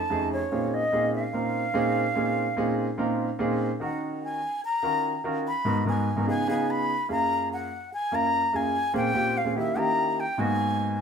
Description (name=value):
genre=jazz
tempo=146 BPM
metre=4/4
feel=straight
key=Bb minor, Eb minor from 3.8 s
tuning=A4 = 437 Hz
part: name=mellow jazz flute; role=melody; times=0.0-11.0 s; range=C#5 to Cb6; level=-27 LUFS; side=equal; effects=none
part: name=warm grand piano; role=accompaniment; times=0.1-11.0 s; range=F2 to Bb4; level=-26 LUFS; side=right 1 dB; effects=none
room=moderate studio reverb, RT60 0.8 s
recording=band playing live in one room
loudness=-24 LUFS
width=side -6 dB against mid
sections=0.0-3.8 A section; 3.8-11.0 B section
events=none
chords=0.0 F7alt; 0.5 Bbm11; 3.8 Ebm7; 5.5 Abm7; 6.3 Db7; 7.1 Gbmaj9; 8.7 Bbm9; 9.6 Eb7b9; 10.4 Abm9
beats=0.11 | 0.52 0.93 1.34 1.75 | 2.16 2.58 2.99 3.40 | 3.81 4.22 4.63 5.04 | 5.45 5.87 6.28 6.69 | 7.10 7.51 7.92 8.33 | 8.74 9.15 9.56 9.97 | 10.38 10.79